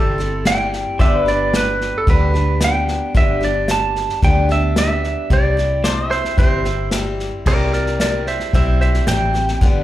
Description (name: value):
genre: honky-tonk and classic country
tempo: 111 BPM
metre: 4/4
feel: straight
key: C major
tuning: A4 = 440 Hz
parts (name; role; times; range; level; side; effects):
- direct-recorded clean electric guitar; second line; 0.0-9.6 s; A4 to A5; -20 LUFS; right 2 dB; tape echo, slapback echo
- picked steel-string acoustic guitar; accompaniment; 0.0-9.8 s; G2 to G4; -23 LUFS; left 3 dB; slapback echo
- pedal steel guitar; sustained chords; 0.0-7.4 s; B4 to E5; -27 LUFS; equal; lush chorus
- vintage muted fingered electric bass; bass; 0.0-9.8 s; G1 to D2; -19 LUFS; equal; none
- unplugged drum kit; drums; 0.2-9.7 s; crash cymbal, hi-hat, kick drum, snare drum; -19 LUFS; equal; none
room: light reverb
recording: live gig heard through the venue's PA, club reverb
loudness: -15 LUFS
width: side -14 dB against mid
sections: 0.0-7.5 A section; 7.5-9.8 B section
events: clean electric guitar solo 0.0-7.5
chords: 0.0 C; 1.0 G; 5.3 C